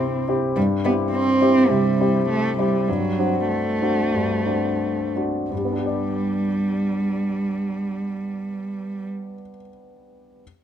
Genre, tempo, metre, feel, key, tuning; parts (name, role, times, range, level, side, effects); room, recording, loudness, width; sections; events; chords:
quick classical-period movement for piano trio; 82-108 BPM; 4/4; straight; G major; A4 = 442 Hz
warm cello; second line; 0.0-9.1 s; F#3 to C4; -23 LUFS; right 2 dB
warm concert grand piano; accompaniment; 0.0-10.4 s; G2 to D5; -23 LUFS; left 2 dB
moderate recital hall reverb, RT60 1.6 s; close, detailed microphones; -20 LUFS; side -9 dB against mid
0.0-5.5 A section; 5.5-8.3 B section
slowing down 0.0-5.5
0.0 C/G; 2.9 D7/G; 5.5 G